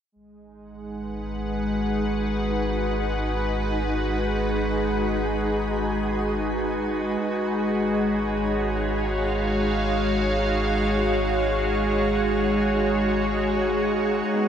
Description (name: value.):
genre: ambient.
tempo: free time.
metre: none.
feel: none.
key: G# dorian.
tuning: A4 = 440 Hz.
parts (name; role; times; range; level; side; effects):
evolving wavetable pad; sustained chords; 0.7-14.5 s; G#3 to F#5; -23 LUFS; equal; chorus, built-in reverb.
warm sub bass; bass; 0.2-14.5 s; G#1; -30 LUFS; equal; none.
organ-like drone; drone; 0.9-14.4 s; G#3 to D#4; -30 LUFS; left 1 dB; ensemble chorus, built-in reverb.
felt-muted upright piano; arpeggios; 14.3-14.5 s; B3; -35 LUFS; equal; none.
drifting glass-harmonics texture; texture; 14.3-14.5 s; none; barely audible; none; none.
room: wet shimmer reverb, RT60 8.6 s.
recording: none.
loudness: -22 LUFS.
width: side -8 dB against mid.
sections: 0.2-14.3 A section.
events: none.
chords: 0.2 G#m7; 7.2 D#m11/G#.